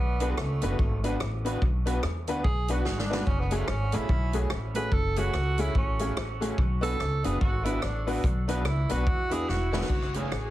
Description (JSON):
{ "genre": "ska", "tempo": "145 BPM", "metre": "4/4", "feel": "swing 60% on 8ths", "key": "unclear", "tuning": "A4 = 439 Hz", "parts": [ { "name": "clear tenor saxophone", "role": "melody", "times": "0.0-9.9 s", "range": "G#3 to B4", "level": "-33 LUFS", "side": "right 3 dB", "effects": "dub echo" }, { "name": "upright bass", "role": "bass", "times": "0.0-10.5 s", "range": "E1 to E2", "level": "-29 LUFS", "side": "equal", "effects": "none" }, { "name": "electric guitar at the edge of break-up", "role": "accompaniment", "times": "0.2-10.3 s", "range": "A3 to B4", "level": "-35 LUFS", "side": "right 3 dB", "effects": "none" }, { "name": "honky-tonk upright piano", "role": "stabs", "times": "0.2-9.8 s", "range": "A3 to B4", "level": "-35 LUFS", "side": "left 4 dB", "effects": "dub echo" }, { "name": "swinging big-band drum kit", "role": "drums", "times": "0.2-10.4 s", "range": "crash cymbal, hi-hat, kick drum, rim click, snare drum", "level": "-30 LUFS", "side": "equal", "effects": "none" }, { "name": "warm horn section", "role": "melody", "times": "9.3-10.5 s", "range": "E4 to G#4", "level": "-35 LUFS", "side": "left 2 dB", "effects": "dub echo" } ], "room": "light reverb", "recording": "heavily compressed radio sound", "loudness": "-25 LUFS", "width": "side -14 dB against mid", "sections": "0.0-9.9 A section", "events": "tenor saxophone solo 0.0-9.9; drum fill 2.9-3.3, 9.5-9.9", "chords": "0.0 Bm; 3.3 F#madd9; 6.6 Bm; 9.9 F#madd9", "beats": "0.37 0.79 1.20 | 1.61 2.03 2.44 2.86 | 3.27 3.69 4.10 4.51 | 4.93 5.34 5.76 6.17 | 6.58 7.00 7.41 7.83 | 8.24 8.65 9.07 9.48 | 9.90 10.31" }